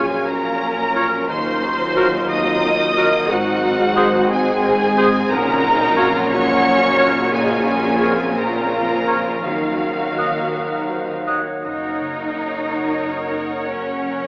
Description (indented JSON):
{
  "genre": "cinematic, emotional film score for orchestra",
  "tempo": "54-60 BPM (dotted quarters)",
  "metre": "6/8",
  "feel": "rubato",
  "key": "Gb lydian",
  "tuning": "A4 = 437 Hz",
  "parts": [
    { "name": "rich symphonic violin section", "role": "melody", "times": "0.0-14.3 s", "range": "F5 to Eb6", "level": "-22 LUFS", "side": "equal", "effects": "none" },
    { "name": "large flute ensemble", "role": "second line", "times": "0.0-11.4 s", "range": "Eb6 to Gb6", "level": "-29 LUFS", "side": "equal", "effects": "none" },
    { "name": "rich symphonic violin section", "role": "second line", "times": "0.0-14.3 s", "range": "Bb3 to Db5", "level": "-24 LUFS", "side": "equal", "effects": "none" },
    { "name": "warm clarinet", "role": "second line", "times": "0.0-11.6 s", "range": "F4 to Db5", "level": "-27 LUFS", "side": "equal", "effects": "none" },
    { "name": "warm oboe", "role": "second line", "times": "0.0-11.4 s", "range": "Bb4 to Eb5", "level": "-27 LUFS", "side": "equal", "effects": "none" },
    { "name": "rich symphonic viola section", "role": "accompaniment", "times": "0.0-14.3 s", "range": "Gb4 to F5", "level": "-23 LUFS", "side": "equal", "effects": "none" },
    { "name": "warm French horn section", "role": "sustained chords", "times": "0.0-11.3 s", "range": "Db3 to F4", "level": "-24 LUFS", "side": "equal", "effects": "none" },
    { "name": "concert harp", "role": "arpeggios", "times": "0.0-14.3 s", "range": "Gb2 to Db6", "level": "-28 LUFS", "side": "equal", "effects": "none" },
    { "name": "rich symphonic cello section", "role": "bass", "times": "0.0-14.3 s", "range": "Eb2 to Eb4", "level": "-25 LUFS", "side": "equal", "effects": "none" },
    { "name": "rich symphonic double bass section", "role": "bass", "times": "0.0-14.3 s", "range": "Gb1 to Eb2", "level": "-31 LUFS", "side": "equal", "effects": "none" }
  ],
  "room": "wet cathedral reverb, RT60 6.8 s",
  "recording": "in a vast, echoing space, AM radio sound",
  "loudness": "-15 LUFS",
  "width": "side -39 dB against mid",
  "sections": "0.0-11.6 A section; 11.6-14.3 B section",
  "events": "none",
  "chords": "0.0 Bbm7; 1.3 Ebmadd9; 3.3 Ab7; 5.3 Gbmaj7/Bb; 7.3 Bbm7; 9.4 Ebmadd9; 11.6 Gb"
}